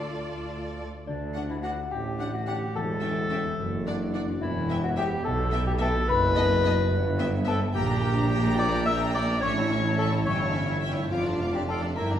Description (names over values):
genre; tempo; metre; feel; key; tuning
cinematic, playful, whimsical film cue; 72 BPM (dotted quarters); 6/8; straight; D major, D minor from 7.8 s; A4 = 439 Hz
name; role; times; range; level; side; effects
dark studio violin section; melody; 0.0-12.2 s; D5 to D6; -40 LUFS; left 2 dB; none
rich studio violin section; second line; 0.0-12.2 s; A4 to Bb5; -37 LUFS; equal; none
rich studio viola section; accompaniment; 0.0-12.2 s; A3 to F4; -36 LUFS; right 1 dB; none
concert harp; arpeggios; 0.0-12.2 s; E2 to D6; -34 LUFS; left 3 dB; none
rich studio double bass section; bass; 0.0-12.2 s; E1 to D2; -32 LUFS; right 2 dB; none
warm studio cello section; bass; 0.0-12.2 s; D2 to F4; -33 LUFS; right 2 dB; none
warm tuba; bass; 0.0-12.2 s; E1 to D2; -33 LUFS; right 2 dB; none
small celesta; melody; 1.1-12.2 s; D5 to E6; -33 LUFS; left 5 dB; none
warm clarinet; second line; 1.1-12.1 s; D4 to E5; -30 LUFS; left 2 dB; none
room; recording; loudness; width
wet recital hall reverb, RT60 1.6 s; recorded in a church or concert hall; -24 LUFS; side -10 dB against mid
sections
0.0-1.1 A section; 1.1-12.2 B section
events
none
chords
0.0 Dm; 1.1 D; 2.8 A7/E; 3.6 D/F#; 4.4 Em; 6.1 B7/F#; 6.9 Em/G; 7.8 Gm/Bb; 9.4 A; 10.3 A7/G; 11.1 Dm/F